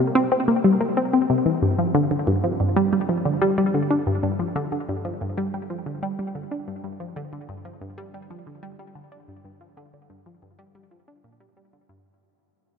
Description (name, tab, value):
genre	ambient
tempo	92 BPM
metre	4/4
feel	straight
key	G minor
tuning	A4 = 440 Hz
part	analog pluck	solo	0.0-12.0 s	G2 to D4	-21 LUFS	left 1 dB	chorus, phaser, tape echo
room	wet huge ambient reverb, RT60 7.9 s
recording	none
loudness	-20 LUFS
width	side -6 dB against mid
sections	0.0-12.1 A section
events	fade-out 0.0-12.1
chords	none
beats	0.32 0.97 | 1.62 2.27 2.92 3.58 | 4.23 4.88 5.53 6.18 | 6.84 7.49 8.14 8.79 | 9.45 10.10 10.75 11.40